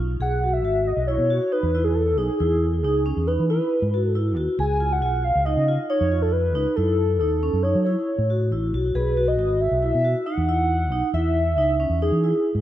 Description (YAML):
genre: progressive instrumental, band music in an uneven meter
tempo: 137 BPM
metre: 5/4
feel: straight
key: B mixolydian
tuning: A4 = 440 Hz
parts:
  - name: fingered electric bass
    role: bass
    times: 0.0-12.6 s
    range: G#1 to F#3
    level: -23 LUFS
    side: equal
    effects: none
  - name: hollow square lead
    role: melody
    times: 0.2-12.6 s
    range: G#4 to G#5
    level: -23 LUFS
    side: equal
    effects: chorus
  - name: vibraphone with hard mallets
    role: arpeggios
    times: 0.2-12.5 s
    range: C#4 to G#4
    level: -26 LUFS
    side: equal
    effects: tape echo
room: moderate lush hall reverb, RT60 2.5 s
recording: rough home demo mix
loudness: -19 LUFS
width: side -12 dB against mid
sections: 0.2-12.6 A section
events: none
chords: 0.2 Bsus4; 2.4 E; 4.6 C#add9; 6.8 F#m; 9.0 Bsus4; 11.1 E